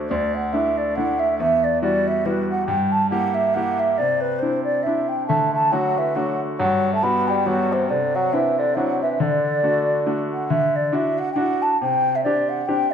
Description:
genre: celtic folk, Celtic waltz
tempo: 138 BPM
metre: 3/4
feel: swing 58% on 8ths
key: D mixolydian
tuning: A4 = 440 Hz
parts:
  - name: mellow hollow wooden flute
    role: melody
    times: 0.0-12.9 s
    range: B4 to B5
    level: -21 LUFS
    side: right 1 dB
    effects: none
  - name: bright grand piano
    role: accompaniment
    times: 0.0-12.9 s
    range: D2 to G4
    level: -23 LUFS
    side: left 1 dB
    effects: none
  - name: warm bassoon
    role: second line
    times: 5.3-10.3 s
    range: C3 to B3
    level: -24 LUFS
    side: equal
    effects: none
room: wet recital hall reverb, RT60 1.4 s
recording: dark, warm production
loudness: -18 LUFS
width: side -8 dB against mid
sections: 0.1-10.5 A section; 10.5-12.9 B section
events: none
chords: 0.1 Dsus2; 1.4 Emadd9; 2.7 Gm6; 4.0 Cadd9; 5.3 D; 6.6 Gmaj7; 7.9 Cadd9; 9.2 D; 10.5 Dadd9; 11.8 Csus2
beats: | 0.10 0.53 0.96 | 1.40 1.83 2.26 | 2.69 3.13 3.56 | 3.99 4.42 4.86 | 5.29 5.72 6.16 | 6.59 7.02 7.46 | 7.89 8.33 8.76 | 9.20 9.63 10.07 | 10.50 10.94 11.37 | 11.81 12.24 12.68

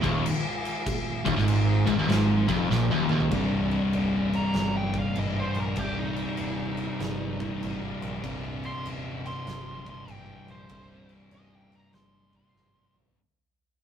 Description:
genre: stoner and doom metal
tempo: 98 BPM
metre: 4/4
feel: swing 64% on 8ths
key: C minor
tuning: A4 = 440 Hz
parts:
  - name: percussive tonewheel organ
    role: sustained chords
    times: 0.0-13.1 s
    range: C3 to D5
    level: -41 LUFS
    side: equal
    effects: slow rotary speaker, chorus vibrato
  - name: biting overdriven guitar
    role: riff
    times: 0.0-3.3 s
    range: Eb2 to Bb2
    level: -28 LUFS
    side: equal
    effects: none
  - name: thick fuzz guitar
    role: riff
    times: 0.0-13.2 s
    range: C2 to C3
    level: -30 LUFS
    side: left 6 dB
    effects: distortion
  - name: thick fuzz guitar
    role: riff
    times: 0.0-13.2 s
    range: C2 to C3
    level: -30 LUFS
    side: right 4 dB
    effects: distortion
  - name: growling picked electric bass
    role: bass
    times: 0.0-13.1 s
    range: C1 to Bb1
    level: -35 LUFS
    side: right 1 dB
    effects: overdrive
  - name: oversized low-tuned drum kit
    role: drums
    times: 0.0-13.2 s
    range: crash cymbal, kick drum, snare drum, toms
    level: -33 LUFS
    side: right 1 dB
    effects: none
  - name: fuzz lead guitar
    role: melody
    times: 4.4-13.0 s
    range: Eb4 to C6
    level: -36 LUFS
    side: right 3 dB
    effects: wah, distortion
room: light reverb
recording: rough rehearsal-room recording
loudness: -24 LUFS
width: side -8 dB against mid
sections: 0.0-3.3 A section; 3.3-13.2 B section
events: drum fill 2.7-3.3, 12.5-13.2; fade-out 3.3-13.2; lead electric guitar solo 3.3-13.2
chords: 0.0 Eb5; 3.3 Cm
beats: 0.26 | 0.87 1.48 2.09 2.70 | 3.32 3.93 4.54 5.16 | 5.78 6.39 7.01 7.62 | 8.24 8.85 9.47 10.09 | 10.70 11.32 11.93 12.55

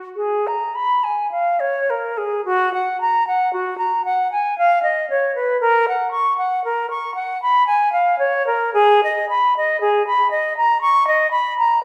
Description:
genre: classical, baroque-style fantasia for unaccompanied flute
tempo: 58 BPM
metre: 3/4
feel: uneven beats, rubato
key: F# major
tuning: A4 = 439 Hz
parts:
  - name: silver concert flute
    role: solo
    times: 0.2-11.8 s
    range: F#4 to C#6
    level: -18 LUFS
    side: equal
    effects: none
room: wet recital hall reverb, RT60 1.5 s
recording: recorded in a church or concert hall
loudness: -19 LUFS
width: mono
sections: 0.0-2.5 A section; 2.5-11.8 B section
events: none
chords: none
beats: 0.19 1.31 | 2.45 3.53 4.58 | 5.61 6.63 7.67 | 8.74 9.80 10.82

